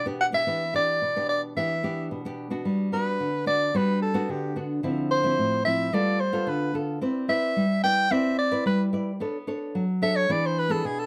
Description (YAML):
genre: samba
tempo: 110 BPM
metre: 4/4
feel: straight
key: G major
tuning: A4 = 440 Hz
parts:
  - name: clear soprano saxophone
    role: melody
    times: 0.0-11.1 s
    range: G4 to G5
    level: -27 LUFS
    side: equal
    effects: none
  - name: nylon-string guitar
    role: accompaniment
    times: 0.0-11.1 s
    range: A2 to D5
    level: -29 LUFS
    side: equal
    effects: none
room: moderate studio reverb, RT60 0.5 s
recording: none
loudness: -25 LUFS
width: mono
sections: 0.0-2.7 A section; 2.7-11.1 B section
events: soprano saxophone solo 2.7-11.1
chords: 0.0 Em7; 2.7 Gmaj7; 4.8 Dm9; 5.9 G9; 7.0 Cmaj9; 9.2 Bm9; 10.3 E7